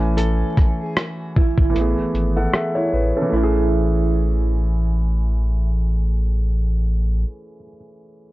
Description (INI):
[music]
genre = lo-fi hip hop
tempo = 76 BPM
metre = 4/4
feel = swing 58% on 16ths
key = A major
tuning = A4 = 445 Hz
[part]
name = felt-muted upright piano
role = accompaniment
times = 0.0-8.3 s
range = E3 to G#5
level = -24 LUFS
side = equal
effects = none
[part]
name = sub bass with octave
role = bass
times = 0.0-7.2 s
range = G#1 to A1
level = -19 LUFS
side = equal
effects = transformer saturation
[part]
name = mellow electric guitar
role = melody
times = 0.2-5.7 s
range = E4 to A4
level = -26 LUFS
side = right 6 dB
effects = tremolo, analog delay
[part]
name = dusty soul sampler-style drum kit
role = drums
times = 0.2-2.7 s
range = hi-hat, kick drum, rim click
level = -17 LUFS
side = equal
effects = none
[sound]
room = light reverb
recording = dry, gritty hardware recording, vinyl crackle, low-pass filter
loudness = -17 LUFS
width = side -18 dB against mid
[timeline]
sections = 0.0-3.3 A section; 3.3-6.5 B section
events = filter sweep 0.0-3.3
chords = 0.0 Amaj7; 1.7 Amaj13/G#; 3.3 Amaj7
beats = | 0.16 0.95 1.74 2.53 | 3.32 4.11 4.90 5.69